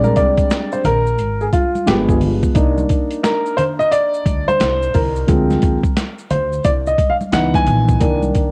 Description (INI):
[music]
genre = hip hop, jazz-hop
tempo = 88 BPM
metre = 4/4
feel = swing 64% on 16ths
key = C minor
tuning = A4 = 440 Hz
[part]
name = warm upright piano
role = accompaniment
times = 0.0-8.5 s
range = Eb3 to Ab5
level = -19 LUFS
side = equal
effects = none
[part]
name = upright bass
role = bass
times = 0.0-8.3 s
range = G1 to Eb2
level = -22 LUFS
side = equal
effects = none
[part]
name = congas and maracas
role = percussion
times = 0.0-8.5 s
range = none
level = -29 LUFS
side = equal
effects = none
[part]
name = boom bap sampler-style drum kit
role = drums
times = 0.2-8.5 s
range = hi-hat, kick drum, snare drum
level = -21 LUFS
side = equal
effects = none
[sound]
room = light reverb, small room ambience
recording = home recording on cassette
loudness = -16 LUFS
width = mono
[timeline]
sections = 0.0-8.5 A section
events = upright piano solo 0.0-8.5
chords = 0.0 Bb13; 1.9 G7b9; 2.6 Cm7; 5.3 Dm7b5; 7.3 Dbm7; 8.0 Cm7